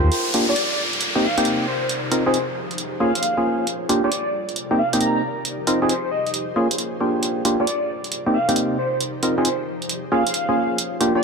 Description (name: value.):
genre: UK garage, two-step garage.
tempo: 135 BPM.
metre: 4/4.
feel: swing 67% on 16ths.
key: unclear.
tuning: A4 = 438 Hz.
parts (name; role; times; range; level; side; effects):
ethereal airy pad; sustained chords; 0.0-11.2 s; C3 to D5; -30 LUFS; equal; ensemble chorus, built-in reverb, tremolo.
percussive organ stab; stabs; 0.0-11.2 s; Bb3 to C5; -21 LUFS; equal; wide subtle chorus, ping-pong delay.
electronic hi-hat; drums; 0.1-11.1 s; none; -25 LUFS; right 3 dB; none.
downlifter; sound effects; 0.1-3.7 s; none; -26 LUFS; equal; none.
airy dreamy lead; melody; 0.5-11.2 s; C5 to Bb5; -25 LUFS; equal; chorus, ping-pong delay.
room: moderate plate reverb, RT60 2.3 s.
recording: none.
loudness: -19 LUFS.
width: side -4 dB against mid.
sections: 0.1-11.2 A section.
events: none.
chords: 0.1 Gm7; 0.8 Cm7; 1.7 Fm7; 2.8 Bbm7; 3.7 Gm7; 4.3 Cm7; 5.2 Fm7; 6.3 Bbm7; 7.2 Gm7; 7.9 Cm7; 8.8 Fm7; 9.9 Bbm7.